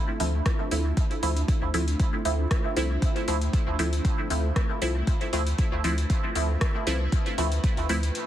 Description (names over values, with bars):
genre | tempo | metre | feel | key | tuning
dub techno | 117 BPM | 4/4 | swing 54% on 16ths | unclear | A4 = 440 Hz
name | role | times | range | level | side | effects
granular cloud pad | sustained chords | 0.0-8.3 s | A3 to E5 | -36 LUFS | left 1 dB | built-in reverb, sidechain pumping
filtered dub chord stab | stabs | 0.2-8.0 s | F3 to E4 | -29 LUFS | right 1 dB | chorus, phaser, sidechain pumping, dub echo
warm sub bass | bass | 0.2-8.1 s | C2 to D2 | -26 LUFS | equal | tube saturation, sidechain pumping
soft vintage rhythm box | drums | 0.2-8.3 s | hi-hat, rim click | -36 LUFS | left 2 dB | soft clipping on snare, dub echo
electronic kick drum | drums | 0.5-7.7 s | none | -25 LUFS | equal | none
room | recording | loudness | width
light reverb | dense, heavily limited modern master, vinyl crackle | -23 LUFS | side -12 dB against mid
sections
0.0-8.3 A section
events
none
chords
0.0 Dm7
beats
0.46 | 0.97 1.48 2.00 2.51 | 3.02 3.53 4.05 4.56 | 5.07 5.59 6.10 6.61 | 7.12 7.64 8.15